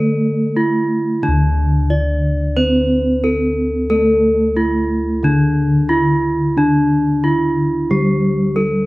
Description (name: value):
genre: Javanese gamelan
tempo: 90 BPM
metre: 4/4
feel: straight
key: D slendro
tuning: A4 = 440 Hz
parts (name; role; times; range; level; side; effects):
- gamelan-type bronze metallophone; melody; 0.0-8.9 s; D4 to D5; -18 LUFS; equal; none
- gamelan-type bronze metallophone; accompaniment; 0.0-8.9 s; D3 to C4-40c; -18 LUFS; equal; none
- gamelan-type bossed gongs; bass; 0.0-8.9 s; D2 to D5; -19 LUFS; left 1 dB; none
room: little or no reverb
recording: recorded outdoors, with no room sound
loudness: -14 LUFS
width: side -19 dB against mid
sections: 0.0-1.2 A section; 1.2-8.9 A section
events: none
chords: none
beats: 0.57 | 1.23 1.90 2.57 3.23 | 3.90 4.57 5.23 5.90 | 6.57 7.23 7.90 8.57